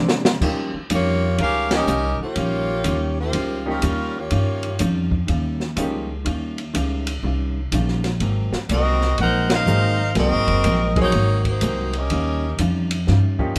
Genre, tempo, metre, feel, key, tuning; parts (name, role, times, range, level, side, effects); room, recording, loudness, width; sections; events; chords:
jazz, big band swing; 123 BPM; 4/4; swing 66% on 8ths; Eb mixolydian; A4 = 440 Hz
vintage hollow-body jazz guitar; accompaniment; 0.0-13.6 s; Ab2 to F4; -30 LUFS; equal
upright bass; bass; 0.0-13.6 s; Gb1 to C3; -24 LUFS; equal
open jazz drum kit; drums; 0.1-13.6 s; crash cymbal, hi-hat, kick drum, ride cymbal, snare drum; -28 LUFS; equal
bright baby grand piano; accompaniment; 0.4-6.1, 9.7-13.5 s; F3 to Ab4; -28 LUFS; equal
warm saxophone section; melody; 0.9-4.8, 8.7-12.6 s; G3 to Gb5; -24 LUFS; equal
moderate club reverb, RT60 0.6 s; -21 LUFS; mono
0.4-13.6 A section
drum fill 0.0-0.4; band accent 1.6, 9.4
0.4 Eb9; 8.2 Ab9; 12.1 Eb9